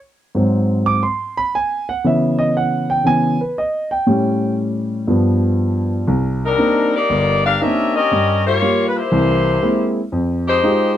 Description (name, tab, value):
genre	jazz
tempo	119 BPM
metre	4/4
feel	swing 69% on 8ths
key	C minor from 6.1 s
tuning	A4 = 437 Hz
part	warm grand piano	accompaniment	0.3-11.0 s	G1 to D6	-16 LUFS	equal	none
part	clear saxophone section	melody	6.5-10.9 s	G3 to F5	-16 LUFS	left 3 dB	none
room	light reverb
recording	dry, close 1970s-style studio recording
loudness	-15 LUFS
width	side -11 dB against mid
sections	0.0-6.1 A section; 6.1-11.0 B section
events	grand piano solo 0.0-6.1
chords	0.0 G#7; 2.0 C#m7; 4.1 A7; 5.1 G7; 6.1 Cm9; 8.1 Gm7b5; 9.1 C7b13; 10.1 Fm9